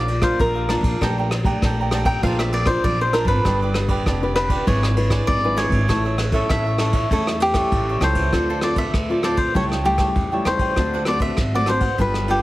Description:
samba and choro; 98 BPM; 4/4; straight; D minor; A4 = 439 Hz
cavaquinho; melody; 0.0-12.4 s; G4 to G5; -23 LUFS; left 1 dB; slapback echo
cavaquinho; accompaniment; 0.0-12.4 s; D4 to Bb5; -28 LUFS; right 3 dB
nylon-string guitar; accompaniment; 0.0-12.4 s; A2 to C5; -25 LUFS; left 2 dB
upright bass; bass; 0.0-12.4 s; F1 to E2; -23 LUFS; equal
vintage brush drum kit; drums; 0.1-12.4 s; kick drum, ride cymbal, rim click; -24 LUFS; equal
light reverb; heavily compressed radio sound; -17 LUFS; side -17 dB against mid
0.0-8.3 A section; 8.3-12.4 B section
cavaquinho solo 0.0-8.3
0.0 Bb; 1.0 Gmadd9/Bb; 2.2 Bbadd9; 3.5 G; 4.7 E7/G#; 5.9 A; 8.3 Dm7; 9.5 A7/C#; 10.8 D7

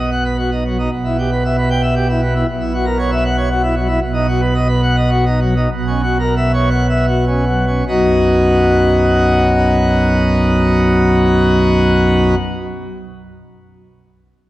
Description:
classical, organ toccata; 71-117 BPM; 3/4; straight; B major; A4 = 440 Hz
pipe organ, plenum; solo; 0.0-12.4 s; B1 to G5; -12 LUFS; equal
wet church reverb, RT60 2.4 s; worn, warbling old tape, cassette tape, warbly pitch drift; -12 LUFS; side -16 dB against mid
0.9-7.9 A section; 7.9-12.9 B section
slowing down 3.3-7.9
0.0 B; 0.9 Em/B; 2.5 F#7/B; 4.0 B; 5.7 F#7/B; 7.9 B

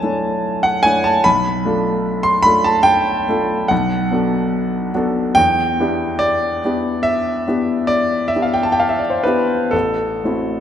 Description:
classical, impressionist solo piano; 60-75 BPM; 5/4; rubato; A4 = 442 Hz
clear grand piano; solo; 0.0-10.6 s; A1 to C6; -15 LUFS; equal
wet concert hall reverb, RT60 2.0 s; -15 LUFS; side -9 dB against mid
0.0-10.6 A section
0.0 Bm11; 1.2 Dm6/B; 3.7 Bm7; 5.4 Em7; 9.7 Am6

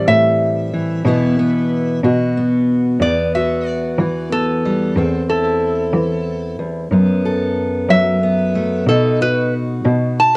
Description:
acoustic folk duo or small band; 61 BPM (dotted quarters); 6/8; straight; E minor; A4 = 440 Hz
metal-body resonator slide guitar; melody; 0.0-10.3 s; A4 to A5; -17 LUFS; equal; cassette tape
fingerpicked steel-string acoustic guitar; accompaniment; 0.0-10.4 s; E2 to A4; -17 LUFS; equal; cassette tape
muted cello; bass; 0.0-10.4 s; E2 to F#3; -20 LUFS; equal
moderate studio reverb, RT60 0.6 s; home recording on cassette; -14 LUFS; side -26 dB against mid
0.0-3.0 A section; 3.0-10.4 B section
resonator guitar played with a steel bar solo 3.0-10.4
0.0 Am7; 1.1 Bsus4; 2.0 B5; 3.0 Emadd9; 5.0 Am/E; 6.9 F#madd11; 8.9 B

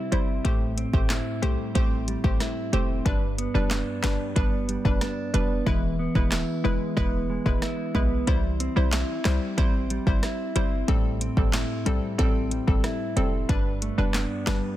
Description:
dancehall; 92 BPM; 4/4; straight; A minor; A4 = 437 Hz
hollow square pluck; accompaniment; 0.0-14.8 s; G3 to C5; -30 LUFS; left 2 dB; chorus, sidechain pumping
mellow electric guitar; arpeggios; 0.0-14.8 s; G2 to E4; -30 LUFS; right 1 dB
short 808-style bass; bass; 0.1-14.6 s; E1 to C2; -26 LUFS; equal
afro-pop drum kit; drums; 0.1-14.6 s; handclaps, hi-hat, kick drum, rim click, snare drum; -26 LUFS; equal
little or no reverb; dense, heavily limited modern master; -22 LUFS; side -14 dB against mid
0.0-14.8 A section
hi-hats muted 5.7-8.3
0.4 Am7; 3.1 G; 5.7 E; 8.3 C; 10.9 Am7; 13.5 G

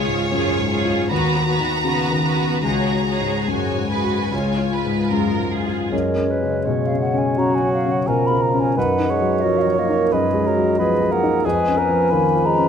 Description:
classical, romantic movement for piano and orchestra; 70-92 BPM; 4/4; rubato; F# major; A4 = 439 Hz
clear grand piano; melody; 0.0-12.7 s; C#2 to F#4; -20 LUFS; left 3 dB
rich symphonic violin section; melody; 0.0-5.1 s; C#5 to A#5; -26 LUFS; left 1 dB
rich studio violin section; second line; 0.0-5.9 s; F#4 to C#5; -26 LUFS; right 1 dB
rich symphonic viola section; accompaniment; 0.0-5.9 s; G#3 to F#4; -26 LUFS; right 4 dB
mellow hollow wooden flute; second line; 5.9-12.7 s; C#5 to B5; -23 LUFS; left 2 dB
warm clarinet; second line; 5.9-12.5 s; G#4 to C#5; -26 LUFS; right 1 dB
dark bassoon; accompaniment; 5.9-12.7 s; D#3 to B3; -23 LUFS; right 4 dB
mellow cor anglais; second line; 7.4-12.7 s; F#4 to C#5; -24 LUFS; right 6 dB
moderate scoring stage reverb, RT60 1.8 s; close, detailed microphones; -17 LUFS; side -7 dB against mid
0.0-5.9 A section; 5.9-12.7 A section
0.0 C#; 1.1 B/D#; 2.6 C#sus4; 4.3 C#; 5.9 F#; 8.8 G#m7/F#; 11.4 C#7/E#

